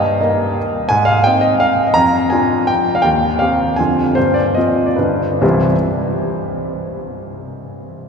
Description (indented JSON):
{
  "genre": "classical, romantic triple-time dance for piano with dotted rhythms",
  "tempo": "127-185 BPM",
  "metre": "3/4",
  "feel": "rubato",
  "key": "C minor",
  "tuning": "A4 = 440 Hz",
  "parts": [
    { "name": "warm grand piano", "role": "solo", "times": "0.0-5.8 s", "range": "C2 to Bb5", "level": "-14 LUFS", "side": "equal", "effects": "none" }
  ],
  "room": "wet cathedral reverb, RT60 6.7 s",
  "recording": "recorded in a church or concert hall",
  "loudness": "-13 LUFS",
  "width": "side -6 dB against mid",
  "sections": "0.0-5.4 A section; 5.4-6.7 B section",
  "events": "slowing down 2.5-5.4",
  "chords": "0.0 Eb/G; 0.9 Ab; 2.0 Ddim/F; 3.1 Cm/Eb; 3.8 Dm7b5/F; 4.2 G7sus4; 5.0 G7; 5.4 C",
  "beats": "0.21 0.57 | 0.90 1.25 1.61 | 1.96 2.31 2.69 | 3.05 3.41 3.79 | 4.16 4.56 4.98 | 5.43"
}